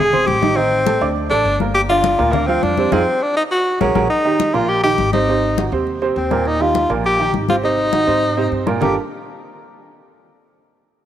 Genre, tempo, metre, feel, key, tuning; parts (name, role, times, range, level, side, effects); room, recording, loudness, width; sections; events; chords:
Afro-Cuban jazz; 204 BPM; 4/4; straight; G minor; A4 = 440 Hz
breathy tenor saxophone; melody; 0.0-9.0 s; Bb3 to G#4; -17 LUFS; left 1 dB; cassette tape
warm upright piano; accompaniment; 0.0-9.0 s; Bb2 to D6; -20 LUFS; right 6 dB; cassette tape
upright bass; bass; 0.0-8.9 s; E1 to Ab2; -24 LUFS; left 1 dB
congas; percussion; 0.1-8.9 s; -24 LUFS; left 9 dB
moderate lush hall reverb, RT60 2.8 s; home recording on cassette; -14 LUFS; side -11 dB against mid
0.0-4.1 A section; 4.1-8.8 B section; 8.8-10.0 C section
band accent 2.9-4.1
0.0 Eaug; 0.6 Adim; 1.2 D5; 1.7 Gm7; 2.9 Fm7; 3.5 F#add9; 4.1 Eb6; 5.3 Abadd9; 6.5 Eb69; 7.6 Abadd9; 8.8 Gm9